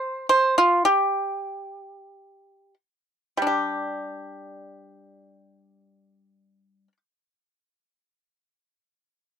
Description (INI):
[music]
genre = chinese traditional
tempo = free time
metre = none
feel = none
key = unclear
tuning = A4 = 442 Hz
[part]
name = pipa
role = solo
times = 0.0-7.0 s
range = G3 to C5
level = -21 LUFS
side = right 1 dB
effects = none
[sound]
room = little or no reverb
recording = dry, close 1970s-style studio recording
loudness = -20 LUFS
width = side -8 dB against mid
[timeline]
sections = 0.0-3.5 A section; 3.5-8.7 B section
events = slowing down 0.0-3.5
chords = none